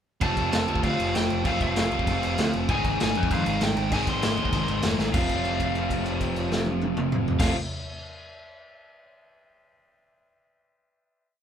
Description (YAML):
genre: punk rock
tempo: 196 BPM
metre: 4/4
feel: straight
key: unclear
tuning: A4 = 440 Hz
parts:
  - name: lead guitar through a small cranked amp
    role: melody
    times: 0.2-7.5 s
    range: F5 to C6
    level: -31 LUFS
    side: left 1 dB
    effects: overdrive
  - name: cranked stack guitar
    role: riff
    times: 0.2-7.6 s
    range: F2 to A4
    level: -30 LUFS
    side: left 8 dB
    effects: overdrive
  - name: distorted electric guitar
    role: riff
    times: 0.2-7.6 s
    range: F2 to Ab3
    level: -30 LUFS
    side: right 8 dB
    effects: distortion
  - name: growling picked electric bass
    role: bass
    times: 0.2-7.5 s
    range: F1 to F2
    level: -31 LUFS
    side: equal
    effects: overdrive
  - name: raw garage drum kit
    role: drums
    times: 0.2-7.5 s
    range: crash cymbal, kick drum, snare drum, toms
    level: -27 LUFS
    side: equal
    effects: none
room: light reverb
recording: band playing live in one room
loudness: -22 LUFS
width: side -8 dB against mid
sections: 0.2-5.2 chorus; 5.2-7.6 final chord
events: drum fill 5.0; held note 5.2-7.4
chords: 0.2 F; 2.7 Ab; 5.2 F